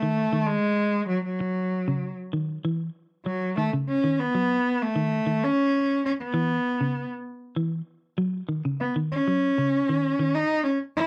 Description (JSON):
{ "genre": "afrobeat", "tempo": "98 BPM", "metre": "4/4", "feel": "straight", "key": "F# dorian", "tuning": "A4 = 438 Hz", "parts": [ { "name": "rich cello", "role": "melody", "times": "0.0-11.1 s", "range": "F#3 to E4", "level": "-26 LUFS", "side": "equal", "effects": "none" }, { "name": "semi-hollow electric guitar", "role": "arpeggios", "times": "0.0-10.4 s", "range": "C#3 to F#3", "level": "-30 LUFS", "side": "equal", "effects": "spring reverb" } ], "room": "little or no reverb", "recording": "dry, close 1970s-style studio recording", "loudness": "-26 LUFS", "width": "mono", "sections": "0.0-11.1 A section", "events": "none", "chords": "0.0 F#m6 (rootless); 0.8 Esus2; 3.3 F#m6; 5.7 E5; 8.2 F#5" }